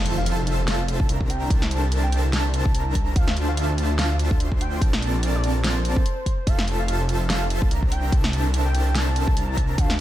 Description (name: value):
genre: future bass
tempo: 145 BPM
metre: 4/4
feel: swing 56% on 16ths, half-time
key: unclear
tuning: A4 = 438 Hz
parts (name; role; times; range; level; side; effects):
- warm velvety synth lead; melody; 0.0-10.0 s; C5 to A5; -33 LUFS; equal; chorus, sidechain pumping, ping-pong delay
- airy dreamy lead; arpeggios; 0.0-10.0 s; A5 to C6; -34 LUFS; right 1 dB; chorus, sidechain pumping
- dense compressed supersaw; riff; 0.0-10.0 s; C4 to C6; -30 LUFS; right 1 dB; sidechain pumping
- wide detuned saw bass; bass; 0.0-10.0 s; F1 to D2; -23 LUFS; equal; chorus, sidechain pumping
- impact; sound effects; 0.0-1.5 s; none; -33 LUFS; equal; none
- pop drum kit; drums; 0.1-10.0 s; hi-hat, snare drum; -28 LUFS; equal; none
- electronic kick drum; drums; 1.0-9.9 s; none; -22 LUFS; equal; none
room: little or no reverb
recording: none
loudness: -20 LUFS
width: side -13 dB against mid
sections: 0.0-10.0 A section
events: impact 0.0-1.5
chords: 0.0 Fmaj7; 1.3 C13; 3.2 Dm9; 4.8 Bbmaj9; 6.5 Fmaj7; 7.9 C13